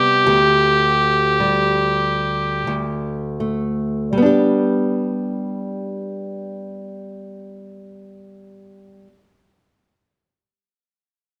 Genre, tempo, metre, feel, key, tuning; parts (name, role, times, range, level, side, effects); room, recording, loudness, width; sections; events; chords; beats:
celtic folk, Celtic slow air; 39-56 BPM; 3/4; rubato; G major; A4 = 440 Hz
rich fiddle; melody; 0.0-2.7 s; G4; -19 LUFS; equal
nylon-string guitar; accompaniment; 0.0-9.2 s; D2 to G4; -22 LUFS; equal
moderate concert hall reverb, RT60 1.7 s; -19 LUFS; mono
0.0-4.2 A section; 4.2-8.6 B section
slowing down 0.0-4.2
0.3 Dsus4; 2.7 D5; 4.2 G
| 0.27 1.40 2.69 | 4.17 5.67 7.12